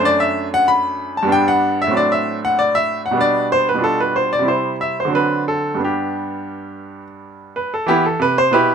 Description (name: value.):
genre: classical, baroque-style suite movement for grand piano.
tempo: 85-97 BPM.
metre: 3/4.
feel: rubato.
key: G major.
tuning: A4 = 439 Hz.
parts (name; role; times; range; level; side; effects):
bright baby grand piano; solo; 0.0-8.7 s; F#2 to B5; -15 LUFS; equal; none.
room: light reverb.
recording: close, detailed microphones.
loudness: -15 LUFS.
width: side -7 dB against mid.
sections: 0.0-7.9 A section.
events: none.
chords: 0.0 D/F#; 1.3 G; 1.9 D7/A; 3.2 G/B; 3.8 G7/B; 4.5 C; 5.1 D7; 5.8 G; 7.9 Em.